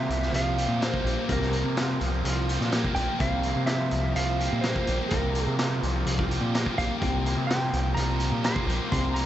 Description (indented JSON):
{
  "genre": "psychedelic rock",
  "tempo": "126 BPM",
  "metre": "4/4",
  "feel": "straight",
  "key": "unclear",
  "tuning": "A4 = 440 Hz",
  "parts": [
    { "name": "clean lap steel guitar", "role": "melody", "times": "0.0-9.3 s", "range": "Bb4 to C6", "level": "-32 LUFS", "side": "right 2 dB", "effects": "dub echo" },
    { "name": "combo organ", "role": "sustained chords", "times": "0.0-9.3 s", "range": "G3 to G5", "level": "-40 LUFS", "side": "right 4 dB", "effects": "none" },
    { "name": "thick fuzz guitar", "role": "riff", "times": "0.0-9.3 s", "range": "C3 to G4", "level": "-29 LUFS", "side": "equal", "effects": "distortion, phaser, dub echo" },
    { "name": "growling picked electric bass", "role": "bass", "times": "0.0-9.2 s", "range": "Bb1 to C3", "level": "-28 LUFS", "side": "equal", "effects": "overdrive" },
    { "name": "vintage drum kit", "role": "drums", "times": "0.1-9.3 s", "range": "hi-hat, kick drum, snare drum", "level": "-31 LUFS", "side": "equal", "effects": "dub echo" }
  ],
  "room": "light reverb",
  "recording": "echo-heavy mix, nothing above 8.0 kHz",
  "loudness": "-24 LUFS",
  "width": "side -12 dB against mid",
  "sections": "0.0-9.3 A section",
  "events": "none",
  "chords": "0.0 C7sus4",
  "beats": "0.34 0.82 | 1.30 1.78 2.25 2.73 | 3.21 3.69 4.16 4.64 | 5.12 5.59 6.07 6.55 | 7.02 7.50 7.98 8.45 | 8.93"
}